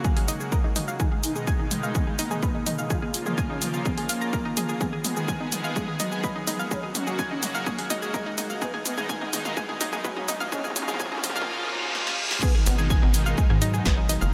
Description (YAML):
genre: melodic techno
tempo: 126 BPM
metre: 4/4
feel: straight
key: G# dorian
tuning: A4 = 443 Hz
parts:
  - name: expressive synth lead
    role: melody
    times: 0.0-14.2 s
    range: D#3 to E#4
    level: -36 LUFS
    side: equal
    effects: analog chorus, analog delay
  - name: lush unison pad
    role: sustained chords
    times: 0.0-14.3 s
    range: B2 to G#4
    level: -35 LUFS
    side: equal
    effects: chorus, sidechain pumping
  - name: analog pluck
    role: arpeggios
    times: 0.0-14.3 s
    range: D#4 to G#6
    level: -34 LUFS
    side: equal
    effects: chorus, sidechain pumping, diffuse ambient delay
  - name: electronic kick drum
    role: drums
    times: 0.0-14.0 s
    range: none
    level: -28 LUFS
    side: equal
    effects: overdrive
  - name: punchy analog drum machine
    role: drums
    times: 0.0-14.3 s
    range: crash cymbal, hi-hat, shaker, snare drum, toms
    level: -33 LUFS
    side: equal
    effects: overdrive
  - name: riser and reverse cymbal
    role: sound effects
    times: 10.2-12.4 s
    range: none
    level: -37 LUFS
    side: equal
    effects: none
  - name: tight sequencer bass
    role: bass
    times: 12.7-14.3 s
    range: F#1 to G#2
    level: -27 LUFS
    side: equal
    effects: sidechain pumping
room: moderate huge ambient reverb, RT60 8.1 s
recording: dreamy mix soaked in reverb, high-pass filter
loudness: -26 LUFS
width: mono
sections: 0.0-12.4 A section; 12.4-14.3 B section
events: build-up 0.0-12.4; drum fill 0.0-11.5, 11.9-12.4; filter sweep on analog synth lead 0.0-12.4; filter sweep 0.0-12.4; reverse cymbal 11.5-12.4; drop 12.4-14.3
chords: 0.0 F#; 1.0 G#m; 2.9 A#m; 4.8 G#m; 6.7 F#; 8.6 G#m; 10.5 A#m; 12.4 G#m